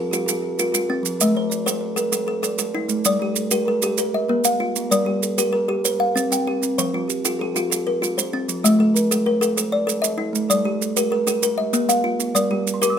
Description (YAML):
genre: southern african traditional, mbira-style interlocking cycle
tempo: 129 BPM (dotted quarters)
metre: 12/8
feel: straight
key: G equiheptatonic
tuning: A4 = 440 Hz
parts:
  - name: kalimba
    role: arpeggios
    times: 0.0-13.0 s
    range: F3+29c to G5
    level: -21 LUFS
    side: left 3 dB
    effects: none
  - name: kalimba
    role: arpeggios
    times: 0.0-13.0 s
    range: F3+29c to E6-43c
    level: -24 LUFS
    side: right 3 dB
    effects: none
  - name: maracas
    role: percussion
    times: 0.1-13.0 s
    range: none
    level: -23 LUFS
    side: right 8 dB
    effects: none
room: light reverb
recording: close, detailed microphones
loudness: -18 LUFS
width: side -8 dB against mid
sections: 0.0-3.1 A section; 3.1-13.0 A section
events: kalimba fill 12.6-13.0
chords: 0.0 F; 1.2 Am; 3.1 Gm; 4.0 Bb5; 4.9 Gm; 5.8 C5; 6.8 F; 8.6 Am; 10.5 Gm; 11.4 Bb5; 12.4 Gm